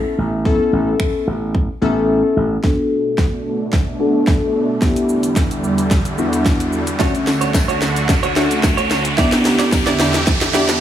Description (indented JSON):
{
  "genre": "dance-pop",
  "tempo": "110 BPM",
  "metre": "4/4",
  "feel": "straight",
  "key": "B minor",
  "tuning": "A4 = 436 Hz",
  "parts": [
    { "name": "glassy digital keys", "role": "accompaniment", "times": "0.0-10.8 s", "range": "A3 to A4", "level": "-18 LUFS", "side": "left 2 dB", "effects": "chorus, sidechain pumping, low-pass filter" },
    { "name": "slap bass with an envelope filter", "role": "bass", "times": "0.0-2.6 s", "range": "A1", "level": "-19 LUFS", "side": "right 1 dB", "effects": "sidechain pumping" },
    { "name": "house drum kit", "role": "drums", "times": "0.5-10.8 s", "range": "finger snaps, hi-hat, kick drum, shaker, snare drum", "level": "-18 LUFS", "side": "equal", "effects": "none" },
    { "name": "supersaw pad", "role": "sustained chords", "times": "2.6-10.8 s", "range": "D2 to G4", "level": "-22 LUFS", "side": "right 2 dB", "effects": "sidechain pumping, low-pass filter" },
    { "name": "riser", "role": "sound effects", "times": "4.0-10.8 s", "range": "none", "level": "-25 LUFS", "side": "right 1 dB", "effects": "none" },
    { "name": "direct-recorded clean electric guitar", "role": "riff", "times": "7.0-10.7 s", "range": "D4 to D5", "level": "-22 LUFS", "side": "right 6 dB", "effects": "lush chorus, low-pass filter" },
    { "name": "tambourine", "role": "percussion", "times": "7.0-10.7 s", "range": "none", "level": "-34 LUFS", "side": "left 9 dB", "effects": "none" }
  ],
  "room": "light reverb",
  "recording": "small room ambience",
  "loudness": "-14 LUFS",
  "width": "side -11 dB against mid",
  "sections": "0.0-2.6 A section; 2.6-10.8 B section",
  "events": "drums muted 2.1-2.6; build-up 2.6-10.8; drum fill 2.6-10.8; filter sweep 2.6-10.8; riser 4.0-10.8",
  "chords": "0.0 Aadd9; 2.6 Bm7; 4.8 Em7; 7.0 Dmaj7; 9.2 Em7"
}